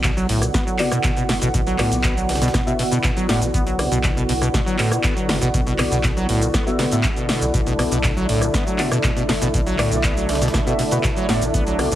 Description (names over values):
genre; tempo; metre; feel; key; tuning
acid house; 120 BPM; 4/4; straight; B minor; A4 = 443 Hz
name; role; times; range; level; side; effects
warm analog pad; sustained chords; 0.0-12.0 s; D3 to F#4; -28 LUFS; right 1 dB; chorus, vintage 12-bit sampler grit, sidechain pumping
acid bass, saw; riff; 0.0-12.0 s; A2 to B3; -23 LUFS; equal; tube saturation, lush chorus, sidechain pumping
round analog bass; bass; 0.0-12.0 s; F#1 to B1; -27 LUFS; equal; sidechain pumping
breakbeat sampler-style drum kit; drums; 0.0-11.9 s; hi-hat, snare drum; -36 LUFS; right 1 dB; none
electro analog drum machine; drums; 0.0-12.0 s; handclaps, hi-hat, rim click, shaker, snare drum; -24 LUFS; equal; none
electronic kick drum; drums; 0.0-11.6 s; none; -23 LUFS; equal; none
warbly tape-like pad; texture; 0.0-12.0 s; E4 to F#5; -26 LUFS; equal; chorus, built-in reverb, sidechain pumping
deep mellow chord stab; stabs; 0.8-11.9 s; B3 to E5; -27 LUFS; left 2 dB; chorus, phaser, cassette tape, dub echo
room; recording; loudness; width
light reverb; heavily compressed radio sound; -17 LUFS; side -13 dB against mid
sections
0.0-12.0 A section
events
none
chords
0.0 Bm